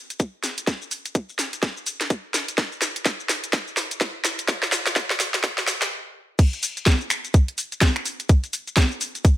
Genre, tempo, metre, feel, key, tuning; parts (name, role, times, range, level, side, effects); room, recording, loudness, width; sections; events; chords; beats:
house; 126 BPM; 4/4; swing 60% on 16ths
garage drum kit; drums; 0.1-9.4 s; crash cymbal, finger snaps, hi-hat, shaker, snare drum; -23 LUFS; equal; overdrive, high-pass filter on snare, high-pass filter on hats, high-pass filter on perc, high-pass filter on cymbals
electronic kick drum; drums; 0.2-9.4 s; -17 LUFS; equal; overdrive, high-pass filter on kick
light reverb; high-pass filter; -21 LUFS; side -14 dB against mid
0.0-6.4 A section; 6.4-9.4 B section
build-up 0.0-6.4; drum fill 0.0-5.9; stop 5.9-6.4; drop 6.4-9.4
0.20 | 0.68 1.15 1.63 2.10 | 2.58 3.06 3.53 4.01 | 4.48 4.96 5.44 5.91 | 6.39 6.87 7.34 7.82 | 8.29 8.77 9.25